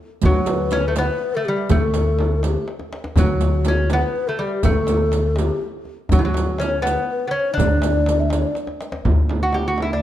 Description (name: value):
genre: Persian modal ensemble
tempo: 82 BPM (dotted quarters)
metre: 6/8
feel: straight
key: D dastgah mahur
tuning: A4 = 443 Hz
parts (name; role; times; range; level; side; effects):
- breathy mellow low ney; second line; 0.2-8.6 s; F#4 to E5; -24 LUFS; left 4 dB; none
- upright bass; bass; 0.2-9.9 s; D2; -20 LUFS; equal; none
- frame drum; percussion; 0.2-9.9 s; none; -25 LUFS; right 3 dB; none
- riq; percussion; 0.2-8.9 s; none; -32 LUFS; right 7 dB; none
- tombak; percussion; 0.2-9.9 s; none; -24 LUFS; left 2 dB; none
- lute; melody; 0.3-10.0 s; E3 to G4; -23 LUFS; right 1 dB; slapback echo
- muted double bass; drone; 9.1-10.0 s; D2; -26 LUFS; right 1 dB; none
room: light reverb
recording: dark, warm production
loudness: -17 LUFS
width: side -12 dB against mid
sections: 0.0-9.1 A section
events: drum fill 2.7-3.2, 8.6-9.1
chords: none